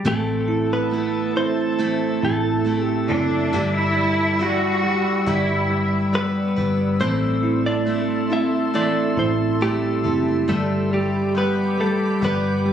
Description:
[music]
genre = pop ballad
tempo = 69 BPM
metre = 4/4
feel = straight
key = unclear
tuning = A4 = 440 Hz
[part]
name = direct-recorded clean electric guitar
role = melody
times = 0.0-12.7 s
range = G3 to E5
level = -25 LUFS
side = equal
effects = ping-pong delay
[part]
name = glassy FM pad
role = sustained chords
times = 0.5-12.7 s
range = G3 to E6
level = -28 LUFS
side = left 2 dB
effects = ensemble chorus, built-in reverb
[part]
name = picked steel-string acoustic guitar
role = arpeggios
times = 0.0-12.7 s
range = A2 to B4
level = -28 LUFS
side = left 2 dB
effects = none
[part]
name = bell-like tine electric piano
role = accompaniment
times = 0.1-12.7 s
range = G3 to E4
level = -22 LUFS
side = right 3 dB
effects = medium stereo tremolo
[part]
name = vintage muted fingered electric bass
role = bass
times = 0.1-12.7 s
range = F#1 to A1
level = -27 LUFS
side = left 1 dB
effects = none
[part]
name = warm studio cello section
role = second line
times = 3.1-5.9 s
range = D4 to F#4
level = -22 LUFS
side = equal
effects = ping-pong delay
[sound]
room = light reverb, studio ambience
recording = recorded on a phone in the room, club reverb, compression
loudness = -18 LUFS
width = side -9 dB against mid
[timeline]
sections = 0.0-12.7 A section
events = none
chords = 0.0 Am; 3.5 Em7/G; 7.0 Am; 10.5 G

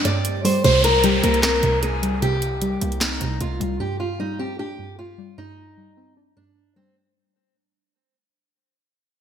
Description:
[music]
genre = hip hop, trap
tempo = 152 BPM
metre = 4/4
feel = half-time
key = C minor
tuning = A4 = 440 Hz
[part]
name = warbly dusty pluck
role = accompaniment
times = 0.0-7.0 s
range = G2 to D4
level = -24 LUFS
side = equal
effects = chorus
[part]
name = deep dark ambient pad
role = sustained chords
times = 0.0-0.6 s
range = G3 to C5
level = -36 LUFS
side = right 2 dB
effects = none
[part]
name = fingerpicked steel-string acoustic guitar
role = melody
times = 0.1-6.9 s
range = C4 to D5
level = -23 LUFS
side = equal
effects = wide subtle chorus
[part]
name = trap drum kit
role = drums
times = 0.1-3.7 s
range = handclaps, hi-hat, snare drum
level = -25 LUFS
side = right 1 dB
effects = gated reverb
[part]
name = distorted 808-style bass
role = bass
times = 0.6-3.8 s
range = C2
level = -25 LUFS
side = right 1 dB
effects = distortion
[part]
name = downlifter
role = sound effects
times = 0.6-3.8 s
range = none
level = -26 LUFS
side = right 1 dB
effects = none
[sound]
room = moderate lush hall reverb, RT60 2.1 s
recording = bright 1980s-style digital production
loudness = -18 LUFS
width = side -8 dB against mid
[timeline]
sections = 0.6-7.0 A section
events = break 0.0-0.6; fade-out 0.6-7.0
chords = 0.0 Gsus4; 0.6 C7(no3); 3.8 Gsus4

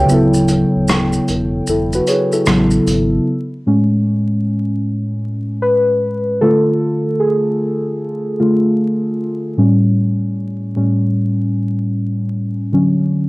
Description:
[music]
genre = lo-fi hip hop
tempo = 76 BPM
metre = 4/4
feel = swing 64% on 16ths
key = A major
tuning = A4 = 440 Hz
[part]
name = muted felt-like synth keys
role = accompaniment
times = 0.0-13.3 s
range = A2 to G5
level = -14 LUFS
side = equal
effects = chorus, cassette tape
[part]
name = sub bass with octave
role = bass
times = 0.0-3.2 s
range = D1 to A1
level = -22 LUFS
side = equal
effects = none
[part]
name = vintage brush drum kit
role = drums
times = 0.1-3.1 s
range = hi-hat, rim click, shaker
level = -21 LUFS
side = equal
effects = cassette tape
[part]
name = finger snaps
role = percussion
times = 0.9-2.7 s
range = none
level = -28 LUFS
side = right 2 dB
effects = none
[sound]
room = moderate studio reverb, RT60 0.6 s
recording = home recording on cassette, vinyl crackle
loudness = -14 LUFS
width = side -21 dB against mid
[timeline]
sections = 0.0-3.3 A section; 3.3-13.3 B section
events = break 0.1-3.3; synth keys solo 3.3-13.3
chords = 0.1 Dmaj9; 2.5 Amaj7; 3.3 Amaj9; 6.4 Dm; 9.6 A7; 12.7 Dmaj7

